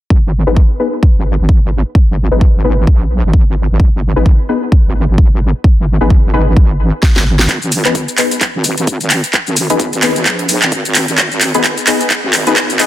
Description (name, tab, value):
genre	bass house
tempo	130 BPM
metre	4/4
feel	swing 58% on 16ths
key	G# minor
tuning	A4 = 441 Hz
part	wobble bass	bass	0.1-12.9 s	G#1 to A#1	-14 LUFS	equal	chorus, overdrive, sidechain pumping, high-pass filter
part	electronic kick drum	drums	0.1-12.7 s	none	-9 LUFS	equal	high-pass filter on kick
part	orchestra-hit-like synth stab	stabs	0.5-12.9 s	B3 to B4	-17 LUFS	left 3 dB	built-in reverb, sidechain pumping, digital delay
part	house drum kit	drums	7.0-12.9 s	handclaps, hi-hat, shaker, snare drum	-13 LUFS	equal	none
room	little or no reverb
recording	dense, heavily limited modern master, high-pass filter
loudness	-10 LUFS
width	side -14 dB against mid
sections	0.1-7.5 A section; 7.5-12.9 B section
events	drum fill 7.0-7.5, 7.5-12.9; build-up 7.5-12.9; filter sweep on synth stab 7.5-12.9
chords	0.1 G#m